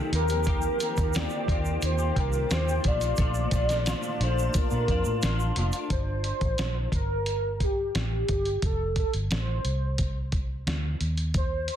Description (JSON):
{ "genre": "indie pop, bedroom pop", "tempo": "88 BPM", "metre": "4/4", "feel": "straight", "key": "unclear", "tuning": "A4 = 445 Hz", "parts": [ { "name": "clean electric guitar", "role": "accompaniment", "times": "0.0-5.9 s", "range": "F2 to G4", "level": "-33 LUFS", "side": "left 3 dB", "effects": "ensemble chorus, vibrato effect" }, { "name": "granular cloud pad", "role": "sustained chords", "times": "0.0-5.9 s", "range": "Eb3 to A5", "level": "-37 LUFS", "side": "left 1 dB", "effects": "built-in reverb" }, { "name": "warm velvety synth lead", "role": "melody", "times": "0.1-11.8 s", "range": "G4 to D5", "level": "-30 LUFS", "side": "equal", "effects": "analog chorus, ping-pong delay" }, { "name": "vintage muted fingered electric bass", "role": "bass", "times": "0.1-11.7 s", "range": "F1 to Bb2", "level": "-28 LUFS", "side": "equal", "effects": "none" }, { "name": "dusty soul sampler-style drum kit", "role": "drums", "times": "0.1-11.8 s", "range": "hi-hat, kick drum, snare drum", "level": "-29 LUFS", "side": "equal", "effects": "none" }, { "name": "egg shaker", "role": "percussion", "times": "0.3-5.9 s", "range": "none", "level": "-44 LUFS", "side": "right 6 dB", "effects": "none" } ], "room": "light reverb", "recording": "dense, heavily limited modern master", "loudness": "-24 LUFS", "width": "side -10 dB against mid", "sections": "0.0-5.9 A section; 5.9-11.8 B section", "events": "none", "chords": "0.1 Eb6; 2.8 Bbmaj7; 5.9 Gm; 8.6 F5; 11.0 Eb5" }